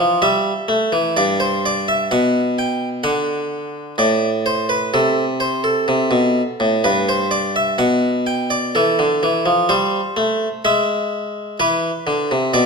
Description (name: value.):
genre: classical, baroque-style two-part invention for harpsichord.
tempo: 63 BPM.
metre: 4/4.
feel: straight.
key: A minor from 8.7 s.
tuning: A4 = 442 Hz.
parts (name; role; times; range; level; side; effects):
harpsichord; solo; 0.0-12.7 s; G2 to G5; -16 LUFS; equal; none.
room: wet recital hall reverb, RT60 1.4 s.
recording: none.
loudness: -16 LUFS.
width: side -4 dB against mid.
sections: 0.0-8.7 A section; 8.7-12.7 B section.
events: none.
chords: 0.0 C; 1.2 G; 3.0 D; 4.9 Amadd9; 6.8 G; 8.7 Am; 10.7 E/G#.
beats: 0.22 | 1.16 2.10 3.04 3.98 | 4.92 5.87 6.83 7.78 | 8.75 9.71 10.65 11.60 | 12.55.